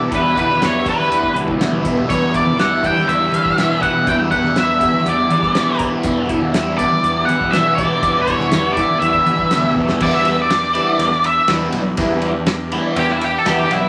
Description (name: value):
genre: psychedelic rock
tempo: 121 BPM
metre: 4/4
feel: straight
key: E minor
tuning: A4 = 439 Hz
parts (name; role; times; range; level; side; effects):
- percussive tonewheel organ; sustained chords; 0.0-13.9 s; E3 to G4; -30 LUFS; equal; none
- crunchy overdriven guitar; riff; 0.0-13.8 s; E2 to E4; -21 LUFS; equal; phaser
- octave-fuzz lead guitar; melody; 0.1-13.9 s; E4 to G5; -19 LUFS; equal; distortion
- fuzz picked electric bass; bass; 0.1-13.9 s; B1 to E3; -27 LUFS; equal; overdrive
- damped 70s drum kit; drums; 0.1-13.8 s; crash cymbal, hi-hat, kick drum, ride cymbal, snare drum; -27 LUFS; equal; none
- congas; percussion; 0.5-10.0 s; none; -30 LUFS; equal; none
room: wet large studio reverb, RT60 1.2 s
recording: vinyl crackle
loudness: -16 LUFS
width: mono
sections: 0.0-10.0 A section; 10.0-13.9 B section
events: drum fill 1.6-2.1, 9.5-10.0; lead electric guitar solo 10.0-13.9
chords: 0.0 Em7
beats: | 0.11 0.61 1.10 1.60 | 2.09 2.59 3.08 3.58 | 4.07 4.57 5.06 5.56 | 6.05 6.54 7.04 7.54 | 8.03 8.52 9.02 9.51 | 10.01 10.50 11.00 11.49 | 11.99 12.48 12.97 13.47